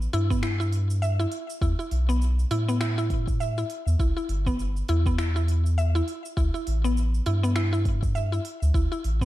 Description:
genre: organic downtempo.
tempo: 101 BPM.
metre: 4/4.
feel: swing 58% on 16ths.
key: unclear.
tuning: A4 = 440 Hz.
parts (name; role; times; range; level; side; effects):
round analog bass; bass; 0.0-9.2 s; G1 to A2; -24 LUFS; equal; sidechain pumping.
organic electronic drum kit; drums; 0.0-9.2 s; cabasa, finger snaps, hi-hat; -40 LUFS; right 1 dB; overdrive.
mallet-like synth pluck; arpeggios; 0.1-9.2 s; B3 to E5; -30 LUFS; equal; chorus, ping-pong delay.
electronic kick drum; drums; 0.3-9.2 s; none; -27 LUFS; equal; none.
room: little or no reverb.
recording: dark, warm production.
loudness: -23 LUFS.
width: side -15 dB against mid.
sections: 0.0-9.2 A section.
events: none.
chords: 0.0 N.C.; 1.6 E5; 4.0 C (rootless); 6.4 Dsus4 (rootless).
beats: 0.43 1.02 | 1.62 2.21 2.81 3.40 | 3.99 4.59 5.18 5.78 | 6.37 6.96 7.56 8.15 | 8.75.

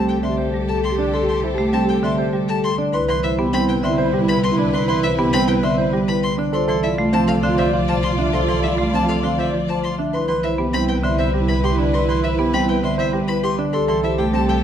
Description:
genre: classical, minimalist pattern music.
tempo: 100 BPM.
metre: 3/4.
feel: straight.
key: C major.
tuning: A4 = 439 Hz.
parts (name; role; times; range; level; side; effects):
vibraphone with medium mallets; melody; 0.0-14.5 s; A4 to A5; -25 LUFS; left 8 dB; none.
hollow alto flute; second line; 0.0-14.6 s; E4 to G4; -26 LUFS; right 3 dB; none.
marimba with medium hard mallets; accompaniment; 0.0-14.5 s; D3 to B3; -22 LUFS; right 1 dB; none.
rich studio string section; sustained chords; 0.0-14.6 s; E4 to D5; -29 LUFS; left 2 dB; none.
rich violin; arpeggios; 0.0-14.6 s; E5 to C6; -27 LUFS; left 3 dB; none.
warm grand piano; arpeggios; 0.0-14.6 s; C4 to C5; -25 LUFS; right 7 dB; none.
dark studio double bass section; bass; 0.0-14.6 s; C2; -25 LUFS; right 1 dB; none.
room: light reverb.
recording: close, detailed microphones.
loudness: -17 LUFS.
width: side -9 dB against mid.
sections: 0.0-14.6 A section.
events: none.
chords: 0.0 Am7/C; 2.9 Cmaj7; 6.5 Dm7/C; 10.1 Cmaj7; 13.7 Am7/C.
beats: 0.54 | 1.14 1.74 2.34 | 2.94 3.54 4.14 | 4.74 5.34 5.94 | 6.54 7.14 7.74 | 8.34 8.94 9.54 | 10.14 10.74 11.34 | 11.94 12.54 13.14 | 13.74 14.34.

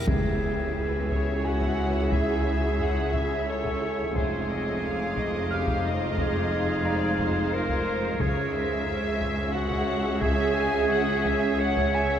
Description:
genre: cinematic, suspense film score.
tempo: 89 BPM.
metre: 3/4.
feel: straight.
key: unclear.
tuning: A4 = 440 Hz.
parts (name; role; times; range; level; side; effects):
clear clarinet; second line; 0.0-12.2 s; F#4 to C#5; -29 LUFS; equal; none.
shimmering ambient pad; sustained chords; 0.0-12.2 s; Eb4 to G#5; -36 LUFS; equal; chorus, built-in reverb.
swarming drone; drone; 0.0-12.2 s; C#2 to F2; -34 LUFS; equal; built-in reverb.
reverse cymbal and impact; sound effects; 0.0-2.1 s; none; -36 LUFS; equal; none.
clear concert grand piano; texture; 0.0-12.2 s; G#5 to B6; -40 LUFS; right 2 dB; none.
muted studio violin section; melody; 0.1-12.2 s; E5 to F5; -38 LUFS; left 2 dB; none.
muted chamber viola section; accompaniment; 0.1-12.2 s; Ab3 to G#4; -32 LUFS; right 2 dB; none.
muted studio cello section; bass; 0.1-12.2 s; C#2 to F2; -33 LUFS; equal; none.
muted studio double bass section; bass; 0.1-12.2 s; F1 to C#2; -32 LUFS; equal; none.
taiko ensemble; drums; 0.1-12.2 s; none; -32 LUFS; equal; none.
timpani; percussion; 0.1-1.1, 8.2-9.2 s; C#3; -35 LUFS; left 2 dB; none.
muted studio violin section; second line; 0.8-12.2 s; B4 to G#5; -34 LUFS; left 1 dB; none.
muted chamber violin section; texture; 4.1-7.8 s; C6 to Eb6; -46 LUFS; left 1 dB; none.
room: wet huge ambient reverb, RT60 8.8 s.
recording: in a vast, echoing space.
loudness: -23 LUFS.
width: side -9 dB against mid.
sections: 0.1-12.2 A section.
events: impact 0.1-2.1.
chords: 0.1 C#m; 4.2 Fm7; 8.2 C#m.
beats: | 0.07 0.76 1.44 | 2.12 2.80 3.48 | 4.16 4.84 5.51 | 6.18 6.86 7.53 | 8.20 8.87 9.54 | 10.22 10.90 11.60.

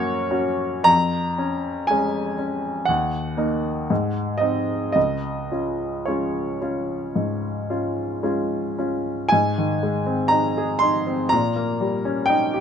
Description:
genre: classical, romantic nocturne for solo piano.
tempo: 52-63 BPM.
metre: 4/4.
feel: rubato.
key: Db major, Ab major from 9.3 s.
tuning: A4 = 438 Hz.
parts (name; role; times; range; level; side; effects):
clear baby grand piano; solo; 0.0-12.6 s; Db2 to C6; -20 LUFS; equal; none.
room: little or no reverb.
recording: close, detailed microphones.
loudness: -20 LUFS.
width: side -8 dB against mid.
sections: 0.0-9.3 A section; 9.3-12.6 B section.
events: none.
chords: 0.0 Gb; 0.9 Db/F; 2.9 Ebm; 3.9 Ab7; 5.0 Db; 9.3 Ab; 11.3 Eb7/Bb.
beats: | 0.89 1.91 2.88 3.90 | 4.96 6.06 7.14 8.23 | 9.33 10.34 11.32 12.28.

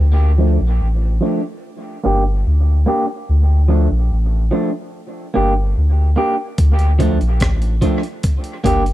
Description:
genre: dub reggae.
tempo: 73 BPM.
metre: 4/4.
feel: straight.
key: D minor.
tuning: A4 = 440 Hz.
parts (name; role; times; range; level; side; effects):
soft dub sub bass; bass; 0.0-8.9 s; G1 to D2; -14 LUFS; equal; tube saturation.
electric guitar at the edge of break-up; accompaniment; 0.4-8.8 s; F3 to G4; -20 LUFS; right 1 dB; low-pass filter, dub echo.
breakbeat sampler-style drum kit; drums; 6.6-8.9 s; hi-hat, kick drum, rim click; -18 LUFS; equal; none.
room: digital ambience.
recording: dry, close 1970s-style studio recording.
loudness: -14 LUFS.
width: side -15 dB against mid.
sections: 0.0-8.9 A section.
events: break 0.0-6.6; filter sweep on clean electric guitar 0.0-8.9.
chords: 0.0 Dm; 1.6 Gm; 3.3 Dm; 4.9 Gm; 6.6 Dm; 8.2 Gm.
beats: 0.81 1.63 2.46 | 3.28 4.11 4.93 5.76 | 6.58 7.41 8.23.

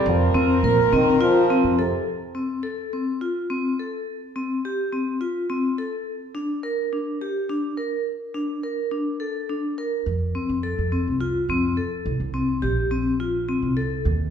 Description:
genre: contemporary instrumental, chamber music in an uneven meter.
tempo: 210 BPM (eighths).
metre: 7/8.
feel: straight.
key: C dorian.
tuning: A4 = 440 Hz.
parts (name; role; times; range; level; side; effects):
French horn with straight mute; second line; 0.0-2.1 s; C3 to G3; -23 LUFS; right 1 dB; none.
dark chamber string section; sustained chords; 0.0-2.1 s; F3 to Bb4; -24 LUFS; left 2 dB; none.
upright bass; bass; 0.1-1.9, 10.1-14.3 s; Bb1 to D3; -25 LUFS; right 2 dB; none.
vibraphone with hard mallets; arpeggios; 0.3-14.0 s; C4 to Bb4; -23 LUFS; left 1 dB; none.
room: wet recital hall reverb, RT60 1.5 s.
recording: recorded in a church or concert hall.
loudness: -21 LUFS.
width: side -8 dB against mid.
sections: 0.0-2.1 A section; 2.1-14.3 B section.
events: none.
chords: 0.1 Fsus4; 2.1 F; 4.1 Csus4; 6.1 Gm/D; 8.1 Bbmaj7/D; 10.1 F; 12.1 C7(no3).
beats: | 0.08 0.37 0.65 0.94 1.22 1.51 1.79 | 2.08 2.36 2.65 2.94 3.22 3.51 3.79 | 4.08 4.36 4.65 4.93 5.22 5.51 5.79 | 6.08 6.36 6.65 6.93 7.22 7.51 7.79 | 8.08 8.36 8.65 8.93 9.22 9.50 9.79 | 10.07 10.36 10.64 10.93 11.21 11.50 11.78 | 12.07 12.35 12.64 12.92 13.21 13.49 13.78 | 14.06.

